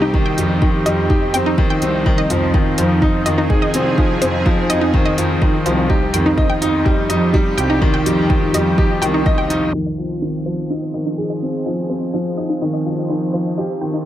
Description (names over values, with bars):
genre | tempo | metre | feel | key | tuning
piano and strings electronica | 125 BPM | 4/4 | straight | F minor | A4 = 440 Hz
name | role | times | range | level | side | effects
lush unison pad | sustained chords | 0.0-14.1 s | F3 to Ab4 | -25 LUFS | right 2 dB | chorus, sidechain pumping
wide unison pluck | arpeggios | 0.0-14.0 s | Eb4 to G5 | -23 LUFS | equal | sidechain pumping, tape echo
bright upright piano | riff | 0.0-14.1 s | Eb3 to Eb5 | -19 LUFS | left 1 dB | low-pass filter, tape echo
warm chamber cello section | bass | 0.0-9.7 s | C2 to F2 | -21 LUFS | equal | sidechain pumping
electronic kick drum | drums | 0.1-9.4 s | none | -17 LUFS | equal | none
electronic hi-hat | drums | 0.4-9.6 s | none | -25 LUFS | equal | none
room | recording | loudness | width
light reverb | low-pass filter | -15 LUFS | side -12 dB against mid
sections
0.0-9.7 A section; 9.7-14.1 B section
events
filter sweep on upright piano 9.7-14.1; filter sweep 9.7-14.1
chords
0.0 Cm; 2.1 Fm7; 5.9 Cm; 9.7 Fm7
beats
| 0.14 0.62 1.10 1.58 | 2.06 2.54 3.02 3.50 | 3.98 4.46 4.94 5.42 | 5.90 6.38 6.86 7.34 | 7.82 8.30 8.78 9.26 | 9.74 10.22 10.70 11.18 | 11.66 12.14 12.62 13.10 | 13.58